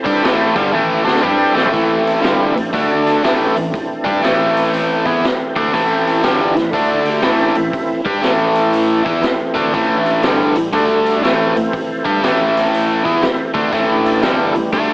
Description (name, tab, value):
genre	blues rock power trio and southern rock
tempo	120 BPM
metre	4/4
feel	swing 64% on 8ths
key	A minor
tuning	A4 = 444 Hz
part	overdriven tonewheel organ	sustained chords	0.0-14.9 s	D3 to C5	-20 LUFS	right 1 dB	slow rotary speaker, chorus vibrato
part	biting overdriven guitar	riff	0.0-14.9 s	G2 to G4	-14 LUFS	equal	none
part	fuzz fingered electric bass	bass	0.1-14.9 s	G1 to G2	-23 LUFS	equal	overdrive
part	vintage drum kit	drums	0.1-14.9 s	hi-hat, kick drum, snare drum, toms	-22 LUFS	equal	none
room	light reverb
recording	vinyl crackle, AM radio sound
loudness	-13 LUFS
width	side -23 dB against mid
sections	0.0-1.7 A section; 1.7-14.9 B section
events	drum fill 0.7-1.7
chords	0.0 Am; 2.7 D5; 3.2 Am; 6.7 D5; 7.2 Am; 10.7 D5; 11.2 Am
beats	0.23 0.73 1.23 | 1.73 2.23 2.73 3.23 | 3.73 4.24 4.74 5.24 | 5.74 6.24 6.74 7.24 | 7.74 8.24 8.74 9.24 | 9.74 10.24 10.74 11.24 | 11.74 12.24 12.74 13.24 | 13.74 14.24 14.74